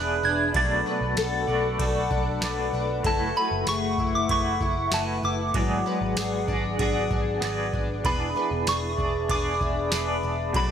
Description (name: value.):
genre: dream pop.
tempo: 96 BPM.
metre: 4/4.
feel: straight.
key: unclear.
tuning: A4 = 441 Hz.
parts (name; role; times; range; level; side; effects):
soft synth bell; melody; 0.0-10.7 s; A5 to A6; -28 LUFS; right 2 dB; chorus, phaser, tape echo.
clean electric guitar; accompaniment; 0.0-10.7 s; B2 to D5; -31 LUFS; right 2 dB; tremolo, lush chorus.
hollow soft pad; sustained chords; 0.0-10.7 s; A3 to B5; -30 LUFS; left 2 dB; chorus.
picked plugged-in twelve-string acoustic guitar; arpeggios; 0.0-10.7 s; F#3 to A4; -30 LUFS; left 4 dB; ensemble chorus, tape echo.
vintage muted picked electric bass; bass; 0.0-10.7 s; E1 to B1; -31 LUFS; right 1 dB; none.
booming analog drum machine; drums; 0.5-10.7 s; kick drum, ride cymbal, snare drum, tambourine; -30 LUFS; right 1 dB; none.
room: moderate plate reverb, RT60 1.3 s.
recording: none.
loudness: -23 LUFS.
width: side -8 dB against mid.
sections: 0.0-8.0 A section; 8.0-10.7 B section.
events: none.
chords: 0.0 E7; 0.5 Bm7; 3.0 F#m11; 5.5 G#m7b5; 8.0 E7.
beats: | 0.55 1.17 1.80 2.42 | 3.05 3.67 4.30 4.92 | 5.55 6.17 6.80 7.42 | 8.05 8.67 9.30 9.92 | 10.55.